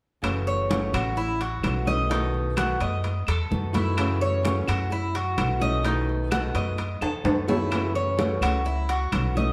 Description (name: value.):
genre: latin, Cuban son and guajira.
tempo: 128 BPM.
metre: 4/4.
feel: straight.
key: unclear.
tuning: A4 = 441 Hz.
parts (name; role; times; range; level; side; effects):
nylon-string guitar; accompaniment; 0.2-9.5 s; B2 to F#4; -33 LUFS; equal; none.
upright bass; bass; 0.2-9.5 s; F#1 to F#2; -30 LUFS; equal; none.
claves; percussion; 0.2-9.4 s; none; -40 LUFS; equal; none.
congas; percussion; 0.2-9.5 s; none; -35 LUFS; equal; none.
timbales; percussion; 0.2-9.4 s; none; -34 LUFS; equal; none.
Cuban tres; arpeggios; 0.5-9.5 s; D#4 to D#5; -30 LUFS; equal; none.
room: wet large studio reverb, RT60 1.4 s.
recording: band playing live in one room.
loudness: -25 LUFS.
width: mono.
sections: 0.2-9.5 A section.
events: drum fill 7.0-7.7.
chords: 0.2 F#m7; 2.1 B7; 4.0 F#m7; 5.8 B7; 7.7 F#m7.